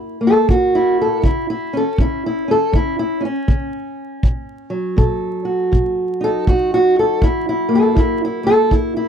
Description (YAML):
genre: acoustic country blues, solo or duo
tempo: 80 BPM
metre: 4/4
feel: swing 63% on 8ths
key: unclear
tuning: A4 = 437 Hz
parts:
  - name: fingerpicked steel-string acoustic guitar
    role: melody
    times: 0.0-9.1 s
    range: F#2 to A4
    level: -16 LUFS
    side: equal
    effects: none
  - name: kick drum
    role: drums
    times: 0.5-8.9 s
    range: none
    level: -17 LUFS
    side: equal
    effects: none
room: light reverb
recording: dry, close 1970s-style studio recording, vinyl crackle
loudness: -14 LUFS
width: side -8 dB against mid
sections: 0.0-9.1 A section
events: none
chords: 0.0 F#7; 1.2 N.C.; 4.2 B7; 7.2 F#7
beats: 0.49 | 1.23 1.98 2.73 3.48 | 4.23 4.98 5.72 6.47 | 7.22 7.97 8.72